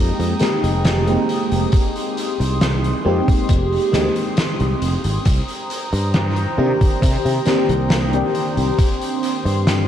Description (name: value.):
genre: vaporwave.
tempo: 68 BPM.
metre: 4/4.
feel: straight.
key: F dorian.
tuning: A4 = 440 Hz.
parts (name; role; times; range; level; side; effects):
FM electric piano with soft pad layer; accompaniment; 0.0-9.9 s; Eb3 to G4; -21 LUFS; equal; phaser, lush chorus, analog delay.
warbly tape-like pad; sustained chords; 0.0-9.9 s; Ab3 to Eb6; -26 LUFS; equal; chorus, built-in reverb.
sustaining fretless electric bass; bass; 0.0-9.9 s; F1 to C3; -20 LUFS; equal; none.
oversized low-tuned drum kit; drums; 0.2-9.9 s; hi-hat, snare drum; -24 LUFS; equal; none.
electronic kick drum; drums; 1.7-9.0 s; none; -16 LUFS; equal; none.
room: light reverb, small room ambience.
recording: cassette tape.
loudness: -16 LUFS.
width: side -10 dB against mid.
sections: 0.0-9.9 A section.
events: none.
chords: 0.0 Fm11; 5.3 Cm7.